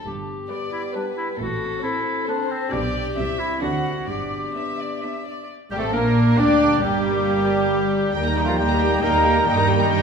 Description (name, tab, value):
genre	quick classical-period movement for symphony orchestra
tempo	135 BPM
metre	3/4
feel	straight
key	G major, G minor from 5.5 s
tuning	A4 = 441 Hz
part	clear studio violin section	melody	0.0-10.0 s	G4 to Bb5	-31 LUFS	left 4 dB	none
part	bright clarinet	second line	0.0-10.0 s	G3 to G4	-29 LUFS	left 2 dB	none
part	dark French horn section	sustained chords	0.1-10.0 s	G3 to A4	-28 LUFS	left 3 dB	none
part	dark studio double bass section	bass	0.1-10.0 s	G1 to G2	-26 LUFS	right 3 dB	none
part	warm studio cello section	bass	0.1-10.0 s	G2 to D4	-28 LUFS	right 5 dB	none
part	warm chamber violin section	second line	0.5-10.0 s	G3 to F#5	-30 LUFS	left 4 dB	none
part	warm studio viola section	accompaniment	0.5-10.0 s	G3 to B4	-28 LUFS	equal	none
part	bright oboe	second line	5.7-10.0 s	G4 to G5	-30 LUFS	right 1 dB	none
part	silver concert flute	second line	5.7-10.0 s	G4 to Bb5	-29 LUFS	left 5 dB	none
part	mellow bassoon	accompaniment	5.7-10.0 s	G3 to D4	-28 LUFS	right 2 dB	none
part	mellow trumpet section	stabs	5.7-10.0 s	Eb4 to D5	-23 LUFS	right 3 dB	none
room	wet concert hall reverb, RT60 1.9 s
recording	minimal, uncompressed stereo recording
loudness	-19 LUFS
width	side -6 dB against mid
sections	0.0-5.5 A section; 5.5-10.0 B section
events	none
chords	0.0 G; 1.4 F#dim/A; 2.7 G/B; 3.2 C; 3.6 D7; 4.1 G; 5.5 Gm; 8.2 Eb; 9.5 Eb/G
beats	| 0.05 0.50 0.95 | 1.39 1.83 2.28 | 2.73 3.17 3.62 | 4.09 4.56 5.02 | 5.49 5.94 6.38 | 6.83 7.27 7.71 | 8.15 8.59 9.03 | 9.47 9.91